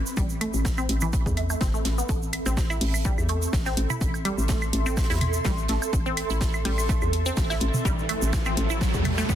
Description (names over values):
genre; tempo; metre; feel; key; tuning
minimal techno; 125 BPM; 4/4; swing 54% on 16ths; A minor; A4 = 440 Hz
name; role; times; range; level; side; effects
hollow knocking FM bass; bass; 0.0-9.4 s; G1 to A2; -27 LUFS; equal; tube saturation, sidechain pumping
granular cloud pad; texture; 0.0-9.4 s; A4 to C6; -34 LUFS; right 2 dB; built-in reverb, sidechain pumping
swarming drone; texture; 0.0-9.4 s; C4; -39 LUFS; equal; built-in reverb, sidechain pumping
egg shaker; percussion; 0.1-9.4 s; none; -37 LUFS; right 4 dB; none
resonant blip pluck; riff; 0.2-9.3 s; E3 to E4; -31 LUFS; equal; phaser, sidechain pumping, digital delay
electronic kick drum; drums; 0.2-9.4 s; none; -27 LUFS; equal; none
tight metal drum kit; drums; 0.2-9.3 s; hi-hat, snare drum; -39 LUFS; right 3 dB; sidechain pumping on hats, high-pass filter on hats, high-pass filter on snare, high-pass filter on room
electronic hi-hat; drums; 0.4-9.2 s; none; -31 LUFS; left 2 dB; none
electronic claves, woodblock and toms; percussion; 0.4-9.3 s; none; -33 LUFS; right 2 dB; digital delay
riser; sound effects; 7.1-9.4 s; none; -33 LUFS; right 2 dB; none
room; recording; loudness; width
small room ambience; dense, heavily limited modern master; -22 LUFS; side -10 dB against mid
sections
0.0-9.4 A section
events
fade-in on ambient pad 0.0-9.4; riser 7.1-9.4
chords
0.0 Am